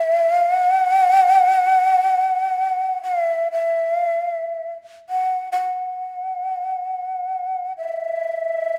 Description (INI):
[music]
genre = japanese traditional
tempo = free time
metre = none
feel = none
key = unclear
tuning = A4 = 440 Hz
[part]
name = breathy mellow shakuhachi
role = solo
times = 0.0-8.8 s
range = E5 to F#5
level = -20 LUFS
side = equal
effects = none
[sound]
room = moderate recital hall reverb, RT60 1.7 s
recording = none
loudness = -20 LUFS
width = mono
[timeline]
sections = 0.0-8.8 A section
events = none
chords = none